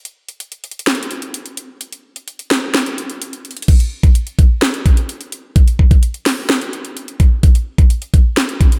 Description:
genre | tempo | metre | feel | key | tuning
hip hop | 128 BPM | 4/4 | half-time | none | none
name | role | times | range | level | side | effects
trap drum kit | drums | 0.1-8.8 s | crash cymbal, hi-hat, kick drum, snare drum | -15 LUFS | equal | none
room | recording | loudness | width
light reverb | none | -14 LUFS | mono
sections
0.0-3.7 A section; 3.7-8.8 B section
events
none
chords
none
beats
0.40 0.87 1.34 | 1.81 2.28 2.75 3.21 | 3.68 4.15 4.62 5.09 | 5.56 6.03 6.50 6.96 | 7.43 7.90 8.37

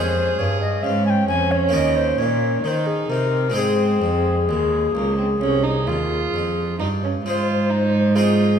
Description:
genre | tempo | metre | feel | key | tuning
classical, baroque-style sonata movement with continuo | 66 BPM | 4/4 | straight | Ab major | A4 = 439 Hz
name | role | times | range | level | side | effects
mellow tenor recorder | melody | 0.0-8.6 s | Ab4 to Ab5 | -23 LUFS | left 5 dB | none
warm violin | second line | 0.0-8.6 s | Ab3 to Ab4 | -25 LUFS | right 7 dB | none
harpsichord | accompaniment | 0.0-8.6 s | C2 to Ab4 | -26 LUFS | left 2 dB | none
rich cello | bass | 0.0-8.6 s | C2 to Eb3 | -22 LUFS | right 2 dB | none
room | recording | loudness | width
wet recital hall reverb, RT60 1.4 s | minimal, uncompressed stereo recording | -18 LUFS | side -8 dB against mid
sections
0.0-7.3 A section; 7.3-8.6 B section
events
none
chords
0.0 Db/F; 1.7 Eb7; 3.6 Ab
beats
0.84 1.74 2.64 | 3.56 4.48 5.41 6.33 | 7.25 8.15

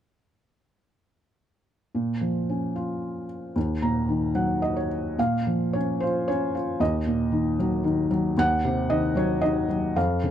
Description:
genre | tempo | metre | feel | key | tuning
classical, lyrical solo piano | 112 BPM | 3/4 | uneven beats, rubato | Bb minor | A4 = 440 Hz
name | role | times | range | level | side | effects
felt-muted upright piano | solo | 1.9-10.3 s | Eb2 to Bb5 | -23 LUFS | equal | none
room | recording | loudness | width
light reverb | dark, warm production | -23 LUFS | side -10 dB against mid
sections
2.0-5.2 A section; 5.2-10.3 B section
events
felt piano fill 3.6-5.2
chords
2.0 Bbm; 3.6 Ebm; 5.2 Bbm; 6.8 Ebm; 8.4 Cdim/Eb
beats
| 1.96 2.50 3.04 | 3.56 4.08 4.62 | 5.18 5.74 6.28 | 6.80 7.33 7.85 | 8.37 8.89 9.42 | 9.96

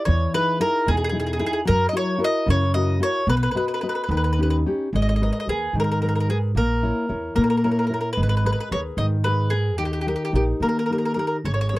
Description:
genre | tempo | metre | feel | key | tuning
italian folk, Italian serenade | 74 BPM (dotted quarters) | 6/8 | rubato | G# harmonic minor from 4.9 s | A4 = 440 Hz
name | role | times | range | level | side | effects
mandolin | melody | 0.0-11.8 s | G4 to D#5 | -24 LUFS | equal | none
nylon-string guitar | accompaniment | 0.0-11.8 s | B2 to D#5 | -25 LUFS | left 2 dB | none
upright bass | bass | 0.1-11.8 s | G#1 to D#3 | -23 LUFS | right 1 dB | none
room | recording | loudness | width
little or no reverb | dry, close 1970s-style studio recording | -20 LUFS | side -18 dB against mid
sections
0.0-4.9 A section; 4.9-11.8 B section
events
none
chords
0.1 Emaj7; 1.7 F#7; 3.3 B; 4.1 D#7; 4.9 G#madd9; 6.6 A#dim; 8.2 G#madd9; 9.8 D#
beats
| 0.08 0.88 | 1.68 2.48 | 3.28 4.10 | 4.93 5.75 | 6.56 7.37 | 8.18 8.99 | 9.80 10.62 | 11.45

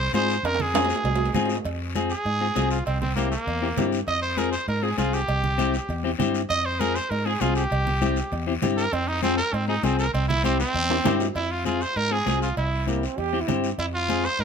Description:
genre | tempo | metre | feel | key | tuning
latin, cumbia | 198 BPM | 4/4 | straight | F harmonic minor | A4 = 442 Hz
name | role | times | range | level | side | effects
growling trumpet | melody | 0.0-14.4 s | Bb3 to Eb5 | -26 LUFS | right 2 dB | none
fingered electric bass | bass | 0.0-14.4 s | C2 to Ab2 | -27 LUFS | right 1 dB | none
clean electric guitar | accompaniment | 0.1-14.3 s | C4 to Ab4 | -27 LUFS | left 6 dB | none
congas | percussion | 0.1-14.2 s | none | -31 LUFS | equal | none
cowbell and timbales | percussion | 0.1-14.4 s | none | -32 LUFS | right 7 dB | none
guiro | percussion | 0.1-14.4 s | none | -38 LUFS | left 7 dB | none
bright trombone | second line | 12.9-13.7 s | Bb3 to G4 | -31 LUFS | right 7 dB | none
room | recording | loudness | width
light reverb | minimal, uncompressed stereo recording | -22 LUFS | side -6 dB against mid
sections
0.0-1.7 A section; 1.7-11.4 B section; 11.4-14.4 C section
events
drum fill 0.4-1.7, 10.9-11.4; trumpet solo 1.7-11.4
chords
0.0 Fm; 2.9 C7; 4.1 Fm; 5.3 C; 6.5 Fm; 7.7 C; 8.9 Fm; 10.1 C; 11.4 Fm; 12.6 C; 13.8 Fm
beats
0.14 | 0.44 0.74 1.04 1.35 | 1.65 1.95 2.26 2.56 | 2.86 3.17 3.47 3.77 | 4.08 4.38 4.68 4.99 | 5.29 5.59 5.90 6.20 | 6.50 6.81 7.11 7.41 | 7.72 8.02 8.32 8.63 | 8.93 9.23 9.54 9.84 | 10.14 10.45 10.75 11.05 | 11.36 11.66 11.96 12.27 | 12.57 12.88 13.18 13.48 | 13.79 14.09 14.39

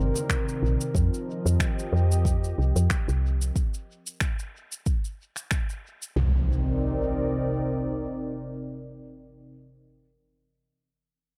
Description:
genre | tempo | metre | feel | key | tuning
organic downtempo | 92 BPM | 4/4 | swing 55% on 16ths | C minor | A4 = 440 Hz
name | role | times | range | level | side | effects
warm analog pad | sustained chords | 0.0-9.5 s | C3 to Eb5 | -32 LUFS | equal | subtle chorus, sidechain pumping
woody FM bass | bass | 0.0-8.1 s | G1 to F2 | -27 LUFS | equal | none
electronic shaker and finger snaps | drums | 0.2-6.1 s | none | -36 LUFS | equal | none
electronic kick drum | drums | 0.3-5.7 s | none | -29 LUFS | equal | none
impact | sound effects | 6.2-9.9 s | none | -36 LUFS | equal | none
room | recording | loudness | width
light reverb | echo-heavy mix | -27 LUFS | mono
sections
0.0-6.2 A section; 6.2-8.8 B section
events
none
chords
0.0 Cm9; 0.9 F9sus4; 3.6 N.C.; 6.2 Cm9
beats
0.29 | 0.95 1.60 2.25 2.90 | 3.55 4.21 4.86 5.51 | 6.16 6.82 7.47 8.12

